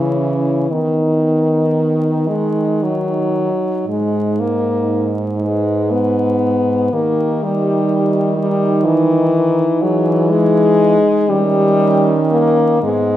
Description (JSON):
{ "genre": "classical, lyrical piece for horn quartet", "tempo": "36-43 BPM (dotted quarters)", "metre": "6/8", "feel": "rubato", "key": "unclear", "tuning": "A4 = 443 Hz", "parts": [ { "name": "mellow French horn", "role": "melody", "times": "0.0-13.2 s", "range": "B3 to B4", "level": "-24 LUFS", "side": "left 4 dB", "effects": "none" }, { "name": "dark French horn", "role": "second line", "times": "0.0-13.2 s", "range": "B3 to D#4", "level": "-22 LUFS", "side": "right 6 dB", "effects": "none" }, { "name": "mellow French horn", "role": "accompaniment", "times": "0.0-13.2 s", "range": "D#3 to B3", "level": "-16 LUFS", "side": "left 2 dB", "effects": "none" }, { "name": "clear French horn", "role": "bass", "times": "0.0-13.2 s", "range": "G#2 to E3", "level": "-19 LUFS", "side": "right 1 dB", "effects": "none" } ], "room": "moderate scoring stage reverb, RT60 2.0 s", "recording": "dark, warm production, vinyl crackle", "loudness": "-13 LUFS", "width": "side -12 dB against mid", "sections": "0.0-13.2 A section", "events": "none", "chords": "0.0 C#m; 0.7 B/D#; 2.3 D#madd11; 3.9 G#m; 6.9 D#; 9.8 Emaj7; 11.3 D#7" }